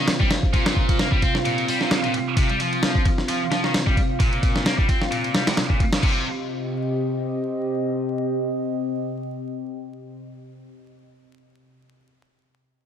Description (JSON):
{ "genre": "breakbeat, breaks", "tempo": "131 BPM", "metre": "4/4", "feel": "swing 55% on 16ths", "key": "C minor", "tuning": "A4 = 440 Hz", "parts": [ { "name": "warbly tape-like pad", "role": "sustained chords", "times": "0.0-10.5 s", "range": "C3 to F5", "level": "-26 LUFS", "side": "equal", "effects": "chorus, built-in reverb, phaser, sidechain pumping" }, { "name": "heavy high-gain guitar", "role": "riff", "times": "0.0-6.2 s", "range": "Bb2 to C4", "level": "-25 LUFS", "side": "equal", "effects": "distortion, vintage 12-bit sampler grit, low-pass filter, ping-pong delay" }, { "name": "dusty soul sampler-style drum kit", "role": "drums", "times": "0.1-6.1 s", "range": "crash cymbal, hi-hat, kick drum, ride cymbal, snare drum", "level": "-21 LUFS", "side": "equal", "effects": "studio reverb" } ], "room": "light reverb, digital ambience", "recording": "vinyl crackle", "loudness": "-20 LUFS", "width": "side -9 dB against mid", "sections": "0.0-6.0 A section; 6.0-9.7 B section", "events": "none", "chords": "0.0 N.C.; 6.0 Cm" }